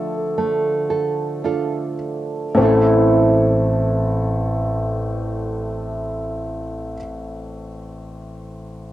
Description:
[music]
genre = pop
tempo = 50-60 BPM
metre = 4/4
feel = straight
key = A minor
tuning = A4 = 440 Hz
[part]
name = warm concert grand piano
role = accompaniment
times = 0.0-8.9 s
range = A1 to A4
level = -20 LUFS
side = left 1 dB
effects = cassette tape
[part]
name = nylon-string guitar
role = arpeggios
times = 0.0-7.1 s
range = A2 to A4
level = -22 LUFS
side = right 4 dB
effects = cassette tape
[sound]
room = moderate spring reverb, RT60 1.4 s, small room ambience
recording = home recording on cassette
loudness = -17 LUFS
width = side -14 dB against mid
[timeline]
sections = 0.0-2.6 A section; 2.6-7.3 B section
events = slowing down 0.0-2.6; grand piano solo 0.0-2.6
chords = 0.0 Dm; 2.6 Am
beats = 0.37 1.44 | 2.58 3.77 4.96 6.14

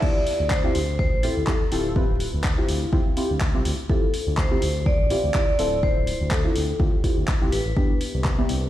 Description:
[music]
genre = deep house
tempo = 124 BPM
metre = 4/4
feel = swing 54% on 16ths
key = D dorian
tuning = A4 = 438 Hz
[part]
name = vibraphone with hard mallets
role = melody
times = 0.0-8.7 s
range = G4 to D5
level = -28 LUFS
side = left 1 dB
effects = dub echo
[part]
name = deep mellow chord stab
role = stabs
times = 0.0-8.5 s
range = B3 to C5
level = -28 LUFS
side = equal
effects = chorus, phaser, cassette tape, sidechain pumping, dub echo
[part]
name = deep house drum kit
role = drums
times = 0.0-8.6 s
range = crash cymbal, handclaps, hi-hat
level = -31 LUFS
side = equal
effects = none
[part]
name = electronic kick drum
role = drums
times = 0.0-8.4 s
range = none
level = -22 LUFS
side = equal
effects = overdrive
[part]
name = smooth synth bass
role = bass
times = 0.4-8.7 s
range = D1 to D2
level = -26 LUFS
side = equal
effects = sidechain pumping
[sound]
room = light reverb, digital ambience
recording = played on a big sound system in a bare room, large studio reverb, vinyl crackle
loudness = -20 LUFS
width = side -13 dB against mid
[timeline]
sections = 0.0-8.7 A section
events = none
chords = 0.0 Dm11; 7.8 Cmaj7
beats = | 0.02 0.51 0.99 1.48 | 1.96 2.44 2.93 3.41 | 3.90 4.38 4.86 5.35 | 5.83 6.31 6.80 7.28 | 7.77 8.25

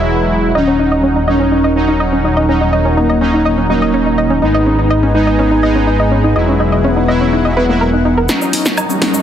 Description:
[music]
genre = melodic techno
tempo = 124 BPM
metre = 4/4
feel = straight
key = Eb phrygian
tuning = A4 = 441 Hz
[part]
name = lush unison pad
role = sustained chords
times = 0.0-9.2 s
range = Eb4 to Ab5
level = -22 LUFS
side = left 1 dB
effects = chorus, phaser
[part]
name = analog synth brass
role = stabs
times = 0.0-9.2 s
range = F#3 to E4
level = -16 LUFS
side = equal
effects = chorus, ping-pong delay
[part]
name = dark detuned saw bass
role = bass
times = 0.0-8.3 s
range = Eb1 to Ab1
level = -17 LUFS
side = equal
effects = none
[part]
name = expressive synth lead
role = melody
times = 0.6-9.2 s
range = Bb3 to Eb4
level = -17 LUFS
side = equal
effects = lush chorus, dub echo
[part]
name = soft round pluck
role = arpeggios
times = 0.6-9.2 s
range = Bb3 to Eb5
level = -17 LUFS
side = equal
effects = chorus, ping-pong delay
[part]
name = deep house drum kit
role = drums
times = 8.3-9.2 s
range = hi-hat, shaker, snare drum, woodblock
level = -15 LUFS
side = equal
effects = overdrive
[part]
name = riser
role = sound effects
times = 8.5-9.2 s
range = none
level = -22 LUFS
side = equal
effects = none
[sound]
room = light reverb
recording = heavily compressed radio sound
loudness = -10 LUFS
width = side -9 dB against mid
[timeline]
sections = 0.0-8.3 A section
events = filter sweep on analog synth pad 0.0-8.3; drum fill 8.3-9.2; riser 8.5-9.2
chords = 0.0 Eadd9; 0.6 Ebm7; 4.4 Abm; 6.4 Eadd9; 8.3 Ebm7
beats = 0.07 | 0.55 1.03 1.52 2.00 | 2.48 2.97 3.45 3.94 | 4.42 4.91 5.39 5.87 | 6.36 6.84 7.32 7.81 | 8.29 8.78

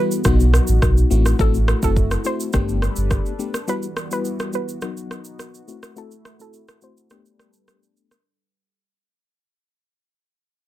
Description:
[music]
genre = afrobeats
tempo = 105 BPM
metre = 4/4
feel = straight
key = unclear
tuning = A4 = 439 Hz
[part]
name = soft round pluck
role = melody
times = 0.0-7.0 s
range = A4 to C5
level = -27 LUFS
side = right 3 dB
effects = chorus, low-pass filter, digital delay
[part]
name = FM electric piano with tremolo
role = accompaniment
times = 0.0-8.2 s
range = F#3 to G4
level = -26 LUFS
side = left 6 dB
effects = low-pass filter
[part]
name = warm analog pad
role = sustained chords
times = 0.0-8.2 s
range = E3 to B4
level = -32 LUFS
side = equal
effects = chorus, low-pass filter
[part]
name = afro-pop drum kit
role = drums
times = 0.1-8.2 s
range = kick drum, rim click, shaker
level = -22 LUFS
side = equal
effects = none
[part]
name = sub bass with octave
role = bass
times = 0.3-3.2 s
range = F#1 to B1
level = -17 LUFS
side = equal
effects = none
[sound]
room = little or no reverb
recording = none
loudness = -17 LUFS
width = side -14 dB against mid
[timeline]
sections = 0.0-8.2 A section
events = fade-out 0.0-8.2; filter sweep 0.0-8.2; break 6.0-8.2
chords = 0.2 B; 1.1 F#m7b5/A; 2.5 Gadd9; 3.7 Emadd9; 4.8 B; 5.7 F#m7b5/A; 7.1 Gadd9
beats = 0.25 0.82 | 1.39 1.96 2.54 3.11 | 3.68 4.25 4.82 5.39 | 5.96 6.54 7.11 7.68

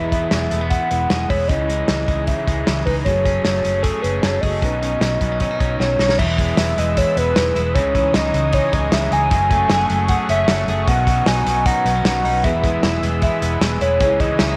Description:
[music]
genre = jangly indie pop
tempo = 154 BPM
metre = 4/4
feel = straight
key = E major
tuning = A4 = 440 Hz
[part]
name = hollow clarinet-like synth lead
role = melody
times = 0.0-14.6 s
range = A4 to G#5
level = -23 LUFS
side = equal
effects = chorus, tape echo
[part]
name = crunchy overdriven guitar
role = accompaniment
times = 0.0-14.6 s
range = F#2 to G#4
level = -30 LUFS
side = equal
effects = none
[part]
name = mellow reed electric piano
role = accompaniment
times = 0.0-6.2, 12.4-14.6 s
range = A3 to C#5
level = -33 LUFS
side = equal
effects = fast tremolo
[part]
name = twelve-string electric guitar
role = arpeggios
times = 0.0-14.6 s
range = F#2 to G#4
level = -27 LUFS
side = equal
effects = spring reverb
[part]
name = vintage muted fingered electric bass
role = bass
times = 0.0-14.6 s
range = E1 to C#2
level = -26 LUFS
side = equal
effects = none
[part]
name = loose indie drum kit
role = drums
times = 0.1-14.5 s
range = crash cymbal, hi-hat, kick drum, snare drum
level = -23 LUFS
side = equal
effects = none
[part]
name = warm analog pad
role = sustained chords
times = 6.2-14.6 s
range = A3 to E6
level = -32 LUFS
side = equal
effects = chorus
[sound]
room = light reverb, studio ambience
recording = none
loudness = -18 LUFS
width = mono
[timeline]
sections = 0.0-6.2 A section; 6.2-14.6 B section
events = drum fill 5.8-6.2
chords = 0.0 E; 1.5 C#madd9; 3.1 F#madd9; 4.6 Badd9; 6.2 E; 7.8 C#madd9; 9.3 F#madd9; 10.9 Badd9; 12.4 E; 14.0 C#madd9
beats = 0.32 0.71 1.10 | 1.50 1.89 2.28 2.67 | 3.06 3.45 3.84 4.23 | 4.62 5.02 5.41 5.80 | 6.19 6.58 6.97 7.36 | 7.75 8.14 8.54 8.93 | 9.32 9.71 10.10 10.49 | 10.88 11.27 11.66 12.05 | 12.44 12.83 13.22 13.61 | 14.00 14.39

